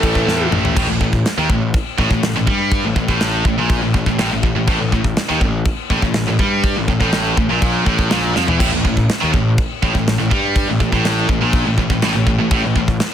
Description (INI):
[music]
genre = heavy metal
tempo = 122 BPM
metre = 4/4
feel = straight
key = unclear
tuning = A4 = 445 Hz
[part]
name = nasal lead guitar with a parked wah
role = melody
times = 0.0-0.5 s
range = A4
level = -24 LUFS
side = right 1 dB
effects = overdrive, tape echo
[part]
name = heavy high-gain guitar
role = riff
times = 0.0-13.0 s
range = A2 to A3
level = -20 LUFS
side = right 10 dB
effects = distortion
[part]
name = scooped high-gain guitar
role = riff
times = 0.0-13.0 s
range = A2 to A3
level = -20 LUFS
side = left 7 dB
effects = distortion
[part]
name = fuzz picked electric bass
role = bass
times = 0.0-13.0 s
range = A1 to G2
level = -21 LUFS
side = equal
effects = overdrive
[part]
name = modern studio drum kit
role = drums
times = 0.0-13.1 s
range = crash cymbal, kick drum, snare drum, toms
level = -19 LUFS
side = equal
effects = none
[sound]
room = studio ambience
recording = dense, heavily limited modern master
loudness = -14 LUFS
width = side -9 dB against mid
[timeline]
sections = 0.8-8.6 A section; 8.6-13.1 A section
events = drum fill 0.3-0.8, 8.4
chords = 0.0 A5